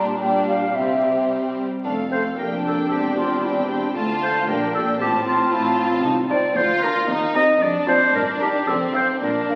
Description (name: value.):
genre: quick classical-period movement for symphony orchestra.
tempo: 114 BPM.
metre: 2/4.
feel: straight.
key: F major.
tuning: A4 = 439 Hz.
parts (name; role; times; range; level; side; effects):
warm studio violin section; melody; 0.0-9.6 s; G4 to Bb5; -31 LUFS; equal; none.
mellow concert flute; second line; 0.0-1.3 s; E5 to A5; -24 LUFS; equal; none.
rich studio violin section; second line; 0.0-9.6 s; C4 to F4; -26 LUFS; equal; none.
warm studio viola section; accompaniment; 0.0-9.6 s; G3 to C5; -30 LUFS; equal; none.
rich studio cello section; bass; 0.0-9.6 s; D2 to C3; -32 LUFS; equal; none.
rich studio double bass section; bass; 0.0-9.6 s; E1 to Eb2; -38 LUFS; equal; none.
clear clarinet; second line; 2.1-9.6 s; E4 to Eb5; -24 LUFS; equal; none.
room: wet recital hall reverb, RT60 1.6 s.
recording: very old 78 rpm record, vinyl crackle.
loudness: -20 LUFS.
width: mono.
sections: 0.0-1.9 A section; 1.9-9.6 B section.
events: none.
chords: 0.0 Gm/Bb; 0.8 C; 1.9 F; 2.4 Gm7/F; 2.9 C/E; 4.0 Dm; 4.5 Gm/Bb; 5.0 F/A; 6.0 F7/C; 6.6 Bb/D; 7.1 Cm7/Eb; 7.6 F; 8.1 Eb/G; 8.7 F7.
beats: 0.20 | 0.75 1.30 | 1.85 2.38 | 2.91 3.44 | 3.96 4.48 | 5.00 5.53 | 6.04 6.57 | 7.09 7.62 | 8.15 8.68 | 9.22.